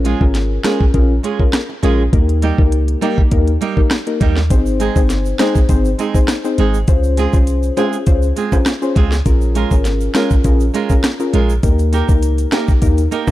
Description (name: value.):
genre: dancehall.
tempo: 101 BPM.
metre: 4/4.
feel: straight.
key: unclear.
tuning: A4 = 440 Hz.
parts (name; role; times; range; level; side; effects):
deep mellow chord stab; accompaniment; 0.0-13.3 s; Bb3 to C5; -19 LUFS; left 3 dB; chorus.
flamenco guitar; arpeggios; 0.0-13.3 s; G3 to Bb4; -21 LUFS; right 6 dB; none.
clean 808-style bass; bass; 0.0-13.1 s; G1 to Eb2; -16 LUFS; equal; none.
island pop drum kit; drums; 0.1-13.3 s; hi-hat, kick drum, rim click, snare drum; -15 LUFS; equal; none.
tube shaker and timbales; percussion; 4.5-13.3 s; none; -30 LUFS; right 5 dB; none.
room: little or no reverb.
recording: dark, warm production.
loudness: -12 LUFS.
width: side -15 dB against mid.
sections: 0.0-13.3 A section.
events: none.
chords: 0.0 Bbm7; 2.1 Eb; 4.5 Ab; 6.9 Dbmaj7; 9.3 Bbm7; 11.6 Eb.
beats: 0.35 0.94 1.53 | 2.13 2.72 3.32 3.91 | 4.50 5.10 5.69 6.29 | 6.88 7.47 8.07 8.66 | 9.26 9.85 10.45 11.04 | 11.63 12.23 12.82.